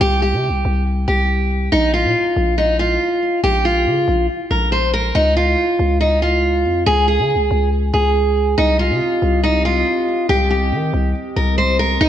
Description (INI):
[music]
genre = hip hop, trap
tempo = 140 BPM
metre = 4/4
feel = half-time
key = C phrygian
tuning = A4 = 440 Hz
[part]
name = picked steel-string acoustic guitar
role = melody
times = 0.0-12.1 s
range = Eb4 to C5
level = -16 LUFS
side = right 1 dB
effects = low-pass filter
[part]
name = growling 808-style bass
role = bass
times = 0.0-12.1 s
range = Bb1 to Eb3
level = -18 LUFS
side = equal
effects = none
[part]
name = glass harmonica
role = sustained chords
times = 8.6-12.1 s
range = C4 to Eb5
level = -27 LUFS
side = left 2 dB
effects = none
[sound]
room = moderate scoring stage reverb, RT60 1.7 s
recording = nothing above 10.9 kHz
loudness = -14 LUFS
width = side -10 dB against mid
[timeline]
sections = 0.0-12.1 A section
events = none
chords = 0.0 C5; 1.7 Bb5; 5.2 Db; 8.6 Cm